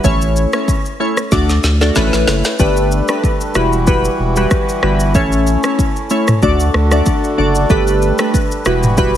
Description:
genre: afrobeats.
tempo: 94 BPM.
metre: 4/4.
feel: swing 55% on 16ths.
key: D major.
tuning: A4 = 440 Hz.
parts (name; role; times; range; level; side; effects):
glassy digital keys; accompaniment; 0.0-9.2 s; G3 to D5; -16 LUFS; equal; chorus, phaser.
saturated sub bass; bass; 0.0-9.2 s; E1 to D2; -16 LUFS; equal; none.
afro-pop drum kit; drums; 0.0-9.1 s; kick drum, rim click, shaker, snare drum, toms; -16 LUFS; equal; none.
hand-pumped harmonium; sustained chords; 2.6-9.2 s; D3 to B4; -21 LUFS; equal; none.
room: light reverb, digital ambience.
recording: heavily compressed radio sound, multiband compression.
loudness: -12 LUFS.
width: side -11 dB against mid.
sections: 0.0-2.6 A section; 2.6-9.2 B section.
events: drum fill 1.3-2.6.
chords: 0.0 A; 1.3 D; 2.0 Aadd9; 2.6 Gadd9; 3.6 Emadd9; 5.1 A; 6.4 D; 7.7 Gadd9; 8.7 Emadd9.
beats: | 0.04 0.68 1.32 1.96 | 2.60 3.23 3.87 4.51 | 5.15 5.79 6.42 7.06 | 7.70 8.34 8.98.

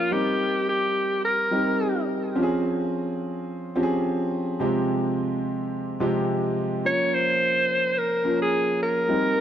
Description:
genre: pop.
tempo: 107 BPM.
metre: 4/4.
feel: swing 55% on 16ths.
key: unclear.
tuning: A4 = 442 Hz.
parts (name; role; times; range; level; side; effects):
bright alto saxophone; melody; 0.0-2.0, 6.9-9.4 s; F4 to Db5; -22 LUFS; equal; digital delay.
warm concert grand piano; accompaniment; 0.0-9.4 s; C3 to Bb4; -24 LUFS; equal; none.
room: moderate lush hall reverb, RT60 2.3 s.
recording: none.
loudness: -22 LUFS.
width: side -10 dB against mid.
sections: 0.0-9.4 A section.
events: none.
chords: 0.1 Eb6; 2.4 Dbmaj7; 4.6 Fmadd9/C; 6.8 Bbm.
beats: | 0.12 0.68 1.24 1.80 | 2.36 2.92 3.48 4.04 | 4.60 5.17 5.72 6.29 | 6.85 7.41 7.97 8.53 | 9.09.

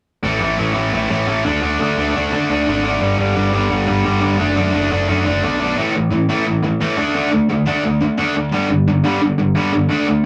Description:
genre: punk.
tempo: 174 BPM.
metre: 4/4.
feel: straight.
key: unclear.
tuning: A4 = 440 Hz.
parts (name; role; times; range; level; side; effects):
distorted electric guitar; riff; 0.2-10.2 s; G2 to D4; -23 LUFS; equal; overdrive.
overdriven electric guitar; riff; 0.2-10.2 s; G2 to D4; -19 LUFS; equal; none.
fuzz picked electric bass; bass; 0.2-5.7 s; F#1 to D3; -24 LUFS; equal; overdrive.
room: moderate booth ambience, RT60 0.2 s.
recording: rough rehearsal-room recording.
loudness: -17 LUFS.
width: mono.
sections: 0.2-5.8 A section; 5.8-10.3 B section.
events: none.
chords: 0.2 A5; 1.5 D5; 3.0 G5; 4.4 D/F#; 5.8 A5; 7.0 D5; 8.5 G5.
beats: | 0.24 0.59 0.93 1.28 | 1.62 1.97 2.32 2.66 | 3.01 3.35 3.70 4.04 | 4.39 4.73 5.08 5.42 | 5.77 6.11 6.46 6.80 | 7.15 7.49 7.84 8.18 | 8.53 8.87 9.22 9.56 | 9.91.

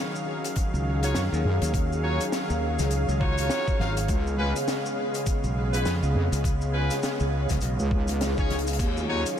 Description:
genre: glitch hop.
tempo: 102 BPM.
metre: 4/4.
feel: swing 59% on 16ths.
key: Eb minor.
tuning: A4 = 440 Hz.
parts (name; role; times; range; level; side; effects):
warm analog pad; sustained chords; 0.0-9.4 s; Db3 to F5; -31 LUFS; right 1 dB; chorus, sidechain pumping.
ethereal airy pad; texture; 0.0-9.4 s; Ab4 to F5; -32 LUFS; left 1 dB; ensemble chorus, built-in reverb, sidechain pumping.
cabasa; percussion; 0.2-9.4 s; none; -41 LUFS; left 2 dB; none.
open jazz drum kit; drums; 0.4-9.4 s; crash cymbal, hi-hat, snare drum; -34 LUFS; left 2 dB; none.
electronic kick drum; drums; 0.6-8.9 s; none; -27 LUFS; equal; none.
modern bright fingered electric bass; bass; 0.7-8.8 s; Ab1 to Gb2; -26 LUFS; equal; none.
bright horn section; stabs; 1.0-9.2 s; Db4 to F5; -33 LUFS; left 1 dB; sidechain pumping, ping-pong delay.
wobble bass; bass; 1.4-9.2 s; Db2 to Gb2; -26 LUFS; equal; chorus, tube saturation.
swell; sound effects; 7.9-8.8 s; none; -39 LUFS; left 2 dB; none.
room: light reverb.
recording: none.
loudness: -23 LUFS.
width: side -9 dB against mid.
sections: 0.0-9.4 A section.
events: swell 7.9-8.8; drum fill 8.5.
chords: 0.0 Ebm9; 4.1 Db7; 8.8 Ebm9.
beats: 0.56 1.15 | 1.74 2.33 2.91 3.50 | 4.09 4.68 5.27 5.85 | 6.44 7.03 7.62 8.21 | 8.79 9.38.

